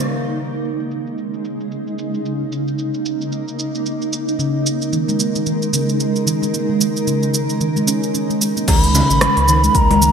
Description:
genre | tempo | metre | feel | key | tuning
organic downtempo | 112 BPM | 4/4 | swing 59% on 16ths | unclear | A4 = 442 Hz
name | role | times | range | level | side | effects
granular cloud pad | sustained chords | 0.0-10.1 s | Db3 to Bb4 | -22 LUFS | right 2 dB | built-in reverb, wide subtle chorus, sidechain pumping
handpan | arpeggios | 0.0-0.1, 4.4-10.1 s | Db3 to Db4 | -20 LUFS | right 1 dB | ping-pong delay
organic electronic drum kit | drums | 0.0-10.1 s | congas, crash cymbal, hi-hat, rim click, shaker | -21 LUFS | equal | low-pass filter on hats, low-pass filter on perc, low-pass filter on snare, low-pass filter on cymbals, low-pass filter on room, gated reverb
mellow bansuri | melody | 8.7-10.1 s | Bb5 to Cb6 | -16 LUFS | right 1 dB | ping-pong delay
warm sub bass | bass | 8.7-10.1 s | Ab1 to Db2 | -18 LUFS | equal | tube saturation, sidechain pumping
electronic kick drum | drums | 8.7-9.9 s | none | -16 LUFS | equal | none
frame drum | percussion | 8.7-9.1 s | none | -27 LUFS | left 2 dB | none
room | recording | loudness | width
wet lush hall reverb, RT60 2.5 s | bright 1980s-style digital production | -16 LUFS | side -7 dB against mid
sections
0.1-8.7 A section; 8.7-10.1 B section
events
filter sweep on drum 0.1-8.7; filter sweep on ambient pad 0.1-8.7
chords
0.1 Dbsus2; 8.7 Abmadd9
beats
| 0.11 0.64 1.18 1.71 | 2.25 2.79 3.32 3.86 | 4.39 4.93 5.46 6.00 | 6.54 7.07 7.61 8.14 | 8.68 9.21 9.75

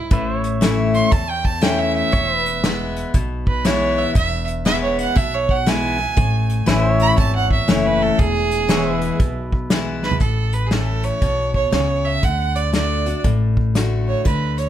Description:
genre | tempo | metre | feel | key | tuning
honky-tonk and classic country | 119 BPM | 4/4 | swing 64% on 8ths | A major | A4 = 440 Hz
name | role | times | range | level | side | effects
clear fiddle | second line | 0.0-14.7 s | E4 to C6 | -22 LUFS | right 4 dB | none
picked steel-string acoustic guitar | accompaniment | 0.0-14.7 s | E2 to F#4 | -22 LUFS | left 4 dB | none
pedal steel guitar | sustained chords | 0.0-10.2 s | B4 to E5 | -28 LUFS | right 2 dB | none
upright bass | bass | 0.1-14.7 s | E1 to E2 | -23 LUFS | equal | none
unplugged drum kit | drums | 0.1-14.7 s | hi-hat, kick drum, snare drum, toms | -20 LUFS | equal | none
room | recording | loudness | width
light reverb | dark, warm production | -16 LUFS | side -11 dB against mid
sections
0.0-10.2 A section; 10.2-14.7 B section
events
fiddle solo 0.0-10.2, 10.2-14.7; drum fill 10.0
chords
0.1 A; 2.1 E; 6.2 A; 8.2 E; 10.2 A; 12.2 D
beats
| 0.12 0.62 1.13 1.64 | 2.14 2.65 3.15 3.65 | 4.16 4.66 5.17 5.67 | 6.18 6.68 7.19 7.69 | 8.20 8.70 9.21 9.71 | 10.21 10.72 11.22 11.73 | 12.23 12.74 13.25 13.75 | 14.26

